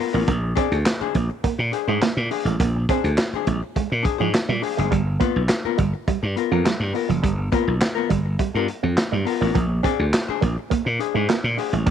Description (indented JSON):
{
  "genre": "funk",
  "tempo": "104 BPM",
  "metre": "4/4",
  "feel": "straight",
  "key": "unclear",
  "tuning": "A4 = 439 Hz",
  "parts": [
    { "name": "archtop guitar, miked and amplified", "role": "accompaniment", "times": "0.0-11.8 s", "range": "B3 to D5", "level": "-26 LUFS", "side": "left 14 dB", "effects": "none" },
    { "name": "electric guitar with an envelope filter", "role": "riff", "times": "0.1-11.9 s", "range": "F3 to C4", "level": "-27 LUFS", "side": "right 15 dB", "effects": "analog chorus" },
    { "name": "slap bass", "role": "bass", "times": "0.1-11.9 s", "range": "F#1 to Bb2", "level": "-22 LUFS", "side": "equal", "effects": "none" },
    { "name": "crunchy breakbeat drum kit", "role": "drums", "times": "0.3-11.9 s", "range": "handclaps, hi-hat, kick drum, snare drum", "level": "-23 LUFS", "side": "equal", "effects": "none" }
  ],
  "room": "small room ambience",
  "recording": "1960s-style stereo with parts hard left and right",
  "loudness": "-19 LUFS",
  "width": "side -9 dB against mid",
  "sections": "0.0-11.9 A section",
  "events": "none",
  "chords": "0.3 Bb9; 4.9 G7#9; 9.6 Bb9"
}